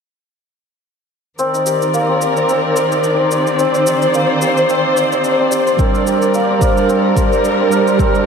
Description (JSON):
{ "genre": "organic downtempo", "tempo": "109 BPM", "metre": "4/4", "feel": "swing 56% on 16ths", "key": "C minor", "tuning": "A4 = 441 Hz", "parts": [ { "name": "dark chamber string section", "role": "sustained chords", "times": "1.4-8.3 s", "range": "Eb3 to D5", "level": "-17 LUFS", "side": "equal", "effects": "sidechain pumping" }, { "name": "santur", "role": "arpeggios", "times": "1.4-8.3 s", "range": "Bb3 to C5", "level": "-15 LUFS", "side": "left 1 dB", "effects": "low-pass filter, analog delay" }, { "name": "shaker", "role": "drums", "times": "1.4-8.2 s", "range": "none", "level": "-28 LUFS", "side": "equal", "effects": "overdrive" }, { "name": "bright tine electric piano", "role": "accompaniment", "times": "5.8-8.3 s", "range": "G3 to Bb4", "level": "-16 LUFS", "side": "right 6 dB", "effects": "analog chorus, sidechain pumping, analog delay" }, { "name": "electronic kick drum", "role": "drums", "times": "5.8-8.1 s", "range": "none", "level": "-16 LUFS", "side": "equal", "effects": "none" } ], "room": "wet cathedral reverb, RT60 4.8 s", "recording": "dreamy mix soaked in reverb", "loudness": "-12 LUFS", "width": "side -6 dB against mid", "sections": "1.4-8.3 A section", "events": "none", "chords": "1.4 Cm9; 5.8 Bb6", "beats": "| 1.39 1.94 2.49 3.04 | 3.59 4.14 4.69 5.24 | 5.79 6.34 6.89 7.44 | 8.00" }